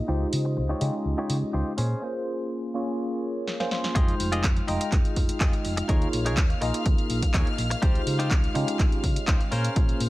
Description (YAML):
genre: filtered disco house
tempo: 124 BPM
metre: 4/4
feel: straight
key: F minor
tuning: A4 = 440 Hz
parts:
  - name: bright tine electric piano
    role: accompaniment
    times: 0.0-10.1 s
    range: Ab3 to G5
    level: -29 LUFS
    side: equal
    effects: medium stereo tremolo, phaser, vintage 12-bit sampler grit, sidechain pumping, low-pass filter
  - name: rich chamber violin section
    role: sustained chords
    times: 0.0-10.1 s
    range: Eb5 to F6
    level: -38 LUFS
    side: left 2 dB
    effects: sidechain pumping, low-pass filter
  - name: direct-recorded clean electric guitar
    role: riff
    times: 0.1-10.0 s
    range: Db4 to Eb5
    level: -33 LUFS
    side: left 1 dB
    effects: sidechain pumping, low-pass filter
  - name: hollow-body short-scale fingered electric bass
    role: bass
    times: 0.1-10.1 s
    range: F1 to Db3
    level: -28 LUFS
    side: equal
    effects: sidechain pumping, low-pass filter
  - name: punchy analog drum machine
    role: drums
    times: 0.3-10.1 s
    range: handclaps, hi-hat, snare drum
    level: -32 LUFS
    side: equal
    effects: sidechain pumping on hats
  - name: electronic kick drum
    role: drums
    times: 4.0-9.9 s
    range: none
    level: -23 LUFS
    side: equal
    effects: none
room: little or no reverb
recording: none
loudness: -23 LUFS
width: side -17 dB against mid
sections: 0.0-4.0 A section; 4.0-10.1 B section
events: filter sweep 0.0-4.0; break 2.0-4.0; drum fill 3.5-4.0; drop 4.0-10.1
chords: 0.1 Dbmaj9#11; 1.8 Bbm9; 4.0 Fm9; 5.9 Eb7sus4; 7.8 Dbmaj9#11; 9.5 Bbm9